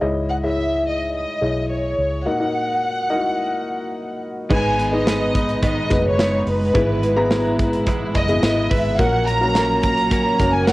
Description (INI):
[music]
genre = piano-driven pop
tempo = 107 BPM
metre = 4/4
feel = straight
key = unclear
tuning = A4 = 441 Hz
[part]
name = warm upright piano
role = accompaniment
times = 0.0-10.7 s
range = G#2 to A#5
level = -23 LUFS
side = left 2 dB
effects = cassette tape
[part]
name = vintage muted fingered electric bass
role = bass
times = 0.0-10.7 s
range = F#1 to C#2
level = -25 LUFS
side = equal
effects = none
[part]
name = dark studio violin section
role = melody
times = 0.3-10.7 s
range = B4 to A#5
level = -22 LUFS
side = equal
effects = cassette tape
[part]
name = warm studio string section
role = sustained chords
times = 4.5-10.7 s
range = F#3 to E4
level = -28 LUFS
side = equal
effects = cassette tape
[part]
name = direct-recorded clean electric guitar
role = riff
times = 4.5-10.7 s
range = G#2 to B4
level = -25 LUFS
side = right 2 dB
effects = cassette tape
[part]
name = modern studio drum kit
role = drums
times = 4.5-10.7 s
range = crash cymbal, hi-hat, kick drum, snare drum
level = -22 LUFS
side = equal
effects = cassette tape
[sound]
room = light reverb, studio ambience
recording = home recording on cassette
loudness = -17 LUFS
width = side -18 dB against mid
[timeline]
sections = 0.0-4.5 A section; 4.5-10.7 B section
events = none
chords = 0.0 C#madd9; 2.3 D#m; 4.5 G#m; 6.7 E/G#; 9.0 F#/A#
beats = | 0.02 0.58 1.14 1.70 | 2.26 2.82 3.38 3.94 | 4.50 5.07 5.63 6.19 | 6.75 7.31 7.87 8.43 | 8.99 9.55 10.11 10.68